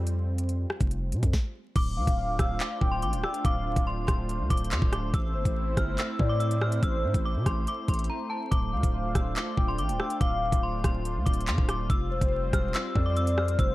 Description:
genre	hip hop, drill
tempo	142 BPM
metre	4/4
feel	half-time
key	D minor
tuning	A4 = 440 Hz
part	warm analog pad	sustained chords	0.0-13.7 s	G3 to C5	-36 LUFS	right 1 dB	chorus
part	distorted 808-style bass	bass	0.0-13.7 s	D1 to C3	-29 LUFS	equal	distortion
part	drill drum kit	drums	0.1-13.7 s	crash cymbal, handclaps, hi-hat, kick drum, rim click, snare drum	-27 LUFS	equal	none
part	metallic FM bell	melody	1.8-13.7 s	A5 to F6	-34 LUFS	left 1 dB	chorus, low-pass filter, ping-pong delay
part	warm velvety synth lead	second line	2.0-13.7 s	C5 to G5	-34 LUFS	left 2 dB	chorus, ping-pong delay
room	digital ambience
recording	dark, warm production, vinyl crackle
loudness	-25 LUFS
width	side -17 dB against mid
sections	0.0-1.8 A section; 1.8-13.7 B section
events	stop 1.3-1.8; break 8.1-8.5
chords	0.0 Fsus2; 1.8 Dm7; 5.1 Am; 8.5 Dm7; 11.9 Fsus2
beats	| 0.07 0.49 0.91 1.33 | 1.76 2.18 2.60 3.02 | 3.45 3.87 4.29 4.71 | 5.14 5.56 5.98 6.41 | 6.83 7.25 7.67 8.10 | 8.52 8.94 9.36 9.79 | 10.21 10.63 11.05 11.47 | 11.90 12.32 12.74 13.16 | 13.59

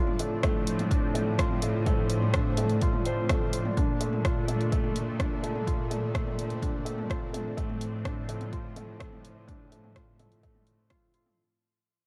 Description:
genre	piano and strings electronica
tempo	126 BPM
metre	4/4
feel	straight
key	unclear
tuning	A4 = 436 Hz
part	lush unison pad	sustained chords	0.0-11.3 s	F3 to D4	-40 LUFS	equal	chorus, phaser, sidechain pumping, shimmer reverb
part	felt-muted upright piano	riff	0.0-11.4 s	A3 to C5	-36 LUFS	equal	delay, shimmer reverb
part	muted studio cello section	bass	0.0-11.4 s	A2 to Bb2	-34 LUFS	equal	sidechain pumping
part	deep house drum kit	drums	0.1-11.4 s	hi-hat, rim click, toms	-38 LUFS	equal	overdrive
part	electronic kick drum	drums	0.4-11.0 s	none	-32 LUFS	equal	overdrive
room	light reverb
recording	dark, warm production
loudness	-29 LUFS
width	mono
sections	0.0-11.4 A section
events	drop 0.0-11.4; fade-out 3.8-11.4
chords	0.0 Dm7/A; 3.8 Bbmaj7; 7.6 Dm7/A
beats	0.43 0.91 1.39 | 1.86 2.34 2.82 3.29 | 3.77 4.24 4.72 5.20 | 5.67 6.15 6.62 7.10 | 7.58 8.05 8.53 9.01 | 9.48 9.96 10.44 10.91

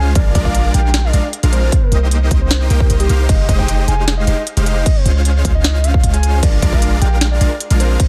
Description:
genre	future bass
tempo	153 BPM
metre	4/4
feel	half-time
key	unclear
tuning	A4 = 443 Hz
part	soft octave-layered synth lead	melody	0.0-8.0 s	G4 to Ab5	-26 LUFS	equal	chorus, sidechain pumping, delay
part	supersaw chords	riff	0.0-8.0 s	Ab3 to G5	-24 LUFS	equal	subtle chorus, sidechain pumping
part	warm 808-style bass	bass	0.0-8.0 s	F1 to Db2	-16 LUFS	equal	sidechain pumping
part	electronic kick drum	drums	0.2-8.1 s	none	-17 LUFS	equal	none
part	trap drum kit	drums	0.2-8.1 s	crash cymbal, hi-hat, snare drum	-24 LUFS	equal	none
room	little or no reverb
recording	dense, heavily limited modern master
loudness	-14 LUFS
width	mono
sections	0.0-8.1 A section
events	none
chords	0.2 Bb7; 1.7 Cm7; 3.3 Fm9; 4.9 Dbmaj7; 6.4 Bb7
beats	| 0.15 0.55 0.94 1.33 | 1.72 2.12 2.51 2.90 | 3.29 3.68 4.08 4.47 | 4.86 5.25 5.64 6.04 | 6.43 6.82 7.21 7.61 | 8.00

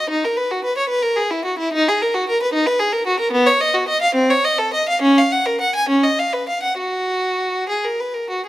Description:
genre	classical, baroque-style suite movement for unaccompanied violin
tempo	64-76 BPM (dotted quarters)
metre	6/8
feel	rubato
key	F# major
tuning	A4 = 440 Hz
part	rich violin	solo	0.0-8.5 s	B3 to G#5	-16 LUFS	equal	none
room	moderate recital hall reverb, RT60 1.6 s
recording	close, detailed microphones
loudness	-16 LUFS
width	side -15 dB against mid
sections	0.0-8.5 A section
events	none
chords	none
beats	| 0.09 0.89 | 1.73 2.54 | 3.33 4.14 | 5.01 5.88 | 6.77 7.69

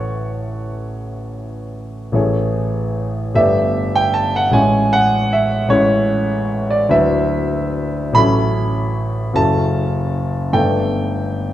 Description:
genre	classical, impressionist solo piano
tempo	50 BPM (dotted quarters)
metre	6/8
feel	uneven beats, rubato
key	A mixolydian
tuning	A4 = 440 Hz
part	clear concert grand piano	solo	0.0-11.5 s	F#1 to C#6	-15 LUFS	equal	none
room	wet scoring stage reverb, RT60 1.6 s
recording	none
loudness	-15 LUFS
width	side -12 dB against mid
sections	0.0-2.1 A section; 2.1-11.5 B section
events	none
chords	0.0 A6; 2.1 Amaj7; 3.4 G69; 4.6 Amaj7; 6.9 D69; 8.2 A69; 9.4 F#m7; 10.5 Gadd9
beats	0.81 | 2.14 3.36 | 4.57 5.74 | 6.92 8.16 | 9.36 10.54

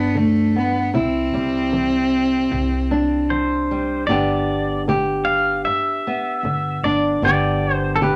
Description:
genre	acoustic folk duo or small band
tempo	76 BPM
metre	4/4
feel	straight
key	unclear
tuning	A4 = 440 Hz
part	warm cello	melody	0.0-3.3 s	A3 to C4	-22 LUFS	equal	none
part	nylon-string guitar	accompaniment	0.0-8.2 s	G2 to G4	-24 LUFS	equal	none
part	upright bass	bass	0.0-8.2 s	G1 to G2	-28 LUFS	equal	none
part	pedal steel guitar	second line	3.3-8.2 s	A4 to F5	-23 LUFS	equal	none
room	moderate studio reverb, RT60 0.5 s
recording	none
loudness	-20 LUFS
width	mono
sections	0.0-4.1 A section; 4.1-8.2 B section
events	pedal steel guitar solo 4.1-8.2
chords	0.0 G; 0.9 Cadd9; 4.1 G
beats	0.15 | 0.94 1.72 2.51 3.30 | 4.08 4.87 5.66 6.44 | 7.23 8.01

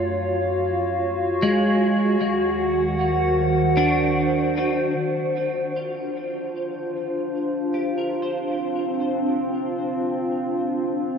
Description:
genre	ambient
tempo	free time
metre	none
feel	none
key	Bb major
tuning	A4 = 439 Hz
part	warbly tape-like pad	sustained chords	0.0-11.2 s	Eb3 to Gb5	-22 LUFS	equal	chorus, built-in reverb
part	deep rumbling drone	bass	0.0-4.9 s	Eb2 to Gb2	-33 LUFS	equal	built-in reverb
part	clean electric guitar	arpeggios	1.4-8.9 s	Ab3 to C5	-26 LUFS	equal	ensemble chorus, ping-pong delay
room	wet huge ambient reverb, RT60 7.9 s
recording	dark, warm production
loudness	-20 LUFS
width	side -6 dB against mid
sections	0.0-5.0 A section; 5.0-11.2 B section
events	fade-in on clean electric guitar 5.0-11.2; filter sweep on ambient pad 5.0-11.2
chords	0.0 Gb5; 1.8 Ebm6; 5.0 Bbadd9 (rootless); 8.1 Dm7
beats	free time

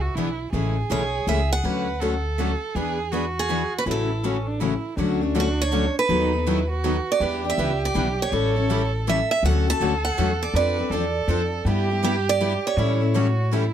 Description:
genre	acoustic string swing (jazz manouche)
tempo	162 BPM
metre	3/4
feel	swing 63% on 8ths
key	A major, D major from 5.0 s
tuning	A4 = 441 Hz
part	picked steel-string acoustic guitar	melody	0.0-13.5 s	F#4 to A5	-26 LUFS	right 4 dB	none
part	dark violin	second line	0.0-13.7 s	C#4 to B4	-29 LUFS	right 5 dB	none
part	upright bass	bass	0.0-13.7 s	A1 to A2	-25 LUFS	equal	none
part	picked steel-string acoustic guitar	accompaniment	0.2-13.6 s	C#3 to A4	-26 LUFS	left 7 dB	none
part	picked steel-string acoustic guitar	accompaniment	0.2-13.6 s	C#3 to B4	-31 LUFS	right 4 dB	none
room	light reverb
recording	close, detailed microphones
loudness	-20 LUFS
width	side -9 dB against mid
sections	0.0-5.0 A section; 5.0-13.7 B section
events	none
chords	0.0 E7; 0.5 Amaj7; 1.6 Dmaj7; 2.8 E7; 3.9 A6; 5.0 Dmaj7; 6.1 B7/D#; 7.2 Em7; 8.3 A7; 9.4 Dmaj7; 10.6 F6; 11.7 G6; 12.8 A6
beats	0.16 | 0.54 0.91 1.28 | 1.65 2.02 2.39 | 2.76 3.13 3.51 | 3.88 4.25 4.62 | 4.99 5.36 5.73 | 6.11 6.48 6.85 | 7.22 7.59 7.96 | 8.33 8.70 9.07 | 9.44 9.81 10.18 | 10.55 10.93 11.30 | 11.67 12.04 12.41 | 12.78 13.15 13.52

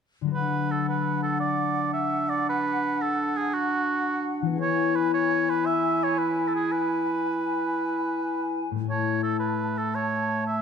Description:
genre	cinematic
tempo	112 BPM (dotted quarters)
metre	12/8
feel	straight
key	unclear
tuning	A4 = 439 Hz
part	concert harp	arpeggios	0.2-10.6 s	A2 to A4	-29 LUFS	left 12 dB	none
part	mellow clarinet	second line	0.3-10.6 s	A3 to E4	-29 LUFS	right 1 dB	none
part	mellow hollow small flute group	second line	0.3-10.6 s	F#5 to A5	-32 LUFS	left 4 dB	none
part	warm oboe	second line	0.3-10.6 s	F#4 to E5	-27 LUFS	right 4 dB	none
room	moderate scoring stage reverb, RT60 1.5 s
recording	none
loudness	-23 LUFS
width	side -6 dB against mid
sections	0.3-10.6 A section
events	none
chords	0.3 D; 4.6 E; 8.9 A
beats	| 0.33 0.87 1.41 1.94 | 2.48 3.01 3.54 4.08 | 4.60 5.13 5.66 6.19 | 6.73 7.27 7.81 8.35 | 8.89 9.43 9.96 10.49

